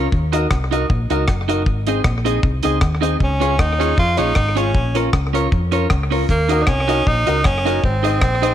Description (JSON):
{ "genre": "ska", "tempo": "156 BPM", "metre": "4/4", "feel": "swing 55% on 8ths", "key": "unclear", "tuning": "A4 = 436 Hz", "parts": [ { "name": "clean electric guitar", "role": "accompaniment", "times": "0.0-8.5 s", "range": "Db4 to Eb5", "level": "-22 LUFS", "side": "right 9 dB", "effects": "none" }, { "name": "warm upright piano", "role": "stabs", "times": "0.0-8.5 s", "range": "C4 to C5", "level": "-24 LUFS", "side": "left 9 dB", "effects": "none" }, { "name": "hollow-body short-scale fingered electric bass", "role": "bass", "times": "0.0-8.5 s", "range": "Gb1 to F2", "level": "-20 LUFS", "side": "equal", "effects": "none" }, { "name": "deep reggae drum kit", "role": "drums", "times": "0.1-8.5 s", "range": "hi-hat, kick drum, rim click", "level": "-20 LUFS", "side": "equal", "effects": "slapback echo" }, { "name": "edgy tenor saxophone", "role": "melody", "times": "3.2-8.5 s", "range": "Bb3 to F4", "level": "-20 LUFS", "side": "right 1 dB", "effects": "none" } ], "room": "light reverb, small room ambience", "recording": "1960s-style stereo with parts hard left and right", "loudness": "-15 LUFS", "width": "side -11 dB against mid", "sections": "0.0-8.5 A section", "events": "none", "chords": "0.1 Ebm; 1.7 Ab; 3.2 Db; 4.8 Bbm; 6.3 Ebm; 7.8 Ab" }